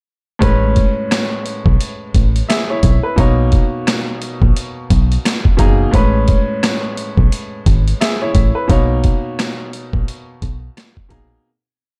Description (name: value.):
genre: hip hop, boom-bap hip-hop.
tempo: 87 BPM.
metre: 4/4.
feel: swing 60% on 16ths.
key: A major.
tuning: A4 = 439 Hz.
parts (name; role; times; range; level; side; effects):
bright upright piano; accompaniment; 0.4-11.5 s; A2 to E5; -22 LUFS; equal; cassette tape, high-pass filter, low-pass filter.
deep dub fingered electric bass; bass; 0.4-11.4 s; F#1 to B1; -18 LUFS; equal; none.
boom bap sampler-style drum kit; drums; 0.4-11.3 s; hi-hat, kick drum, rim click, snare drum; -17 LUFS; equal; none.
room: little or no reverb.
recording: dark, warm production.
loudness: -15 LUFS.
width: mono.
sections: 0.4-11.5 verse.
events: fade-out 8.7-11.5.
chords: 0.4 Amaj9; 3.2 Bmaj9; 5.9 Amaj9; 8.7 Bmaj9.